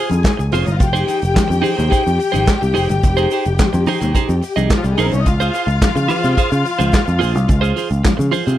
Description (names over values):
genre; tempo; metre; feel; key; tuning
disco; 108 BPM; 4/4; straight; unclear; A4 = 440 Hz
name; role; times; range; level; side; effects
rich studio string section; second line; 0.0-8.3 s; F3 to Ab5; -20 LUFS; left 4 dB; none
clean electric guitar; accompaniment; 0.0-8.6 s; Eb4 to Eb5; -20 LUFS; right 8 dB; wide subtle chorus
picked electric bass; bass; 0.1-8.6 s; F1 to Db3; -17 LUFS; equal; none
warm soul drum kit; drums; 0.1-8.6 s; handclaps, hi-hat, kick drum, snare drum; -17 LUFS; equal; none
congas; percussion; 0.1-8.6 s; none; -26 LUFS; left 6 dB; none
tube shaker; percussion; 0.1-8.6 s; none; -39 LUFS; left 14 dB; none
room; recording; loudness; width
little or no reverb; none; -14 LUFS; side -12 dB against mid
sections
0.0-8.6 A section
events
none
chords
0.0 Fm7; 5.3 Dbmaj7